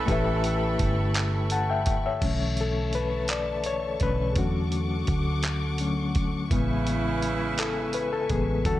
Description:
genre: slow six-eight R&B.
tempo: 56 BPM (dotted quarters).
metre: 6/8.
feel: straight.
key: A major.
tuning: A4 = 440 Hz.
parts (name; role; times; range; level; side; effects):
electric guitar through a small old amp; second line; 0.0-0.9 s; B4; -41 LUFS; right 2 dB; none.
overdriven reed electric piano; accompaniment; 0.0-8.8 s; C#3 to A5; -28 LUFS; left 4 dB; fast tremolo.
warm studio string section; sustained chords; 0.0-8.8 s; C#4 to D6; -36 LUFS; left 2 dB; none.
warm horn section; stabs; 0.0-1.8, 6.5-8.8 s; C#3 to A4; -32 LUFS; right 5 dB; none.
vintage muted fingered electric bass; bass; 0.0-8.8 s; G1 to E2; -28 LUFS; right 1 dB; none.
dusty soul sampler-style drum kit; drums; 0.1-8.8 s; crash cymbal, handclaps, hi-hat, kick drum; -30 LUFS; right 1 dB; none.
room: digital ambience.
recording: none.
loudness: -24 LUFS.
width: side -14 dB against mid.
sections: 0.0-2.2 A section; 2.2-8.8 B section.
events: reed electric piano solo 2.2-8.8.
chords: 0.0 A9; 2.2 Bm11; 4.4 E13sus4; 6.5 Amaj9.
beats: | 0.08 1.15 | 2.22 3.29 | 4.37 5.44 | 6.51 7.58 | 8.65.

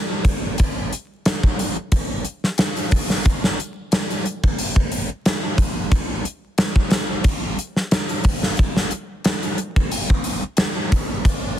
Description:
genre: trip hop.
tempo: 90 BPM.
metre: 4/4.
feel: swing 53% on 16ths.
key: none.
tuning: none.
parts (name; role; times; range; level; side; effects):
gated 80s drum kit; drums; 0.2-11.4 s; hi-hat, kick drum, snare drum; -18 LUFS; equal; soft clipping on kick.
room: light reverb.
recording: dense, heavily limited modern master, vinyl crackle.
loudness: -18 LUFS.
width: side -11 dB against mid.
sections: 0.0-11.6 A section.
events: none.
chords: none.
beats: | 0.60 1.26 1.93 2.60 | 3.26 3.93 4.60 5.26 | 5.93 6.60 7.26 7.93 | 8.60 9.26 9.93 10.60 | 11.26.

